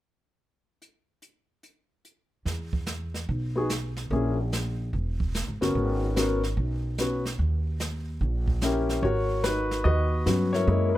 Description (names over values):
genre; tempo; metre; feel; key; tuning
jazz piano trio; 146 BPM; 4/4; swing 65% on 8ths; G# minor; A4 = 439 Hz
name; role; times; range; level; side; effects
jazz brush drum kit; drums; 0.8-11.0 s; brushed snare drum, hi-hat, kick drum, snare drum; -32 LUFS; right 2 dB; none
upright bass; bass; 2.5-11.0 s; E1 to G2; -28 LUFS; equal; none
warm grand piano; melody; 3.6-11.0 s; F#3 to D#5; -26 LUFS; left 2 dB; plate reverb
room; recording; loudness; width
light reverb; none; -25 LUFS; side -14 dB against mid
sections
0.8-2.5 A section; 2.5-9.0 B section; 9.0-11.0 C section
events
none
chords
0.8 N.C.; 2.5 E5; 4.1 A#dim; 5.7 G#m11; 7.4 D#7b9; 9.0 G#m11